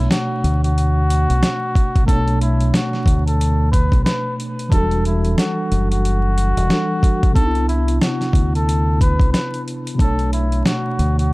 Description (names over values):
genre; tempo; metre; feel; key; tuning
hip hop, boom-bap hip-hop; 91 BPM; 4/4; swing 60% on 16ths; B minor; A4 = 444 Hz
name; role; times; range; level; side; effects
trumpet with cup mute; melody; 0.0-11.3 s; E4 to B4; -24 LUFS; left 1 dB; high-pass filter, low-pass filter
mellow tine electric piano; accompaniment; 0.0-11.3 s; B2 to C#5; -23 LUFS; equal; medium stereo tremolo, high-pass filter, low-pass filter
deep dub fingered electric bass; bass; 0.0-11.3 s; E1 to D2; -17 LUFS; equal; none
dusty soul sampler-style drum kit; drums; 0.1-11.3 s; hi-hat, kick drum, snare drum; -18 LUFS; equal; none
room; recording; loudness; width
digital ambience; dark, warm production, vinyl crackle; -15 LUFS; side -22 dB against mid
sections
0.0-11.3 A section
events
none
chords
0.0 Bm9; 4.7 Em11; 7.4 Cmaj9; 10.0 Bm9